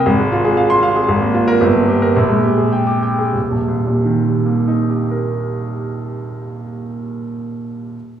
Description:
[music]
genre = classical, virtuoso piano study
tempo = 94-119 BPM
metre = 2/4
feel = rubato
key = Eb major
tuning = A4 = 442 Hz
[part]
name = clear grand piano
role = solo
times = 0.0-8.0 s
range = Eb1 to D6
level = -15 LUFS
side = right 1 dB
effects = none
[sound]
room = wet recital hall reverb, RT60 1.6 s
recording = heard from further back in the room, small room ambience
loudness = -14 LUFS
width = side -9 dB against mid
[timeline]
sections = 0.0-3.3 A section; 3.3-5.7 B section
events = slowing down 0.6-3.3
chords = 0.1 Fm/Ab; 1.1 Bb5/Ab; 1.6 Gm; 2.2 Bb6; 3.3 Eb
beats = | 0.06 0.56 | 1.08 1.61 | 2.15 2.72 | 3.34 3.94 | 4.53 5.13

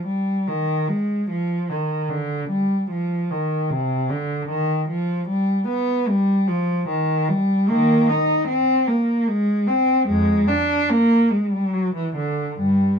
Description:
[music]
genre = classical, baroque-style suite movement for unaccompanied cello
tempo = 75 BPM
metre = 3/4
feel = rubato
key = unclear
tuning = A4 = 438 Hz
[part]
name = warm cello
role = solo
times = 0.0-13.0 s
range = F2 to Eb4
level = -18 LUFS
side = equal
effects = none
[sound]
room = light reverb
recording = dark, warm production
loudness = -18 LUFS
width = side -6 dB against mid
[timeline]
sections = 0.0-13.0 A section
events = none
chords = none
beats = | 0.48 1.29 2.09 | 2.89 3.70 4.49 | 5.28 6.08 6.89 | 7.69 8.48 9.28 | 10.08 10.89 11.73 | 12.59

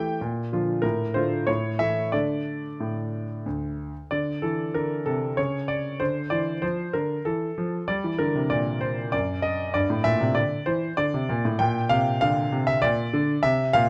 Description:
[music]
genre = classical-period piano sonatina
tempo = 96 BPM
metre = 3/4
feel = rubato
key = D minor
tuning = A4 = 440 Hz
[part]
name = clear grand piano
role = solo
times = 0.0-13.9 s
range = D2 to G5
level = -25 LUFS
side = equal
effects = none
[sound]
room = light reverb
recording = close, detailed microphones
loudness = -26 LUFS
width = mono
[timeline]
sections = 0.0-4.1 A section; 4.1-13.9 B section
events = none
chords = 0.2 Bb; 0.8 Dm/A; 1.5 A; 2.1 D5; 4.1 C13; 5.4 N.C.; 6.0 Dm; 7.9 Gm (rootless); 9.1 N.C.; 9.7 Gm (rootless); 11.6 Bb69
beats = | 0.21 0.84 1.48 | 2.14 2.80 3.46 | 4.12 4.75 5.38 | 6.00 6.63 7.26 | 7.89 8.51 9.13 | 9.75 10.36 10.99 | 11.60 12.21 12.83 | 13.44

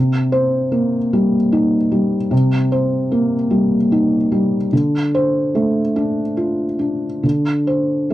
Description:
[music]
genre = neoclassical minimalist piano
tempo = 45-50 BPM (dotted quarters)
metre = 6/8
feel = rubato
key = unclear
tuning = A4 = 440 Hz
[part]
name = felt-muted upright piano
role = solo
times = 0.0-8.1 s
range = C3 to C5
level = -15 LUFS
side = equal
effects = none
[sound]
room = light reverb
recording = dry, close 1970s-style studio recording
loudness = -15 LUFS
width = side -15 dB against mid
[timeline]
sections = 0.0-8.1 A section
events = none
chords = 0.0 Cm7; 4.7 Dm7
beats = 1.12 | 2.32 3.52 | 4.72 5.96 | 7.24

